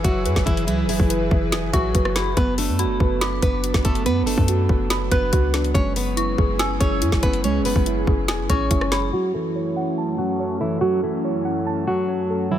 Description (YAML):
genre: hip hop, trap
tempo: 142 BPM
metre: 4/4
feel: half-time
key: F# minor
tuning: A4 = 442 Hz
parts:
  - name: flamenco guitar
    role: melody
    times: 0.0-12.6 s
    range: E3 to C#5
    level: -25 LUFS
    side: equal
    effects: low-pass filter, digital delay
  - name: dark detuned synth bell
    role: second line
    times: 0.0-9.1 s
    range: B5 to F#6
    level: -31 LUFS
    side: left 3 dB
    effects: chorus, digital delay
  - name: muted felt-like synth keys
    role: accompaniment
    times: 0.0-12.6 s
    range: F#3 to B5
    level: -26 LUFS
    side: right 5 dB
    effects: chorus, low-pass filter
  - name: airy breathy pad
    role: sustained chords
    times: 0.0-12.6 s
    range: F#2 to B4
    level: -29 LUFS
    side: left 2 dB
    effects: chorus, low-pass filter
  - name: clean 808-style bass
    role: bass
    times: 0.0-9.1 s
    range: E1 to F#2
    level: -24 LUFS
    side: equal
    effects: none
  - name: trap drum kit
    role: drums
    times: 0.0-9.0 s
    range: hi-hat, kick drum, rim click, snare drum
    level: -22 LUFS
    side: equal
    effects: none
room: digital ambience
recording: none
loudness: -18 LUFS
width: side -11 dB against mid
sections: 0.0-9.1 A section; 9.1-12.6 B section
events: filter sweep 9.1-12.6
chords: 0.0 E/F#; 2.4 Bm/F#; 5.7 C#m/F#; 9.1 F#m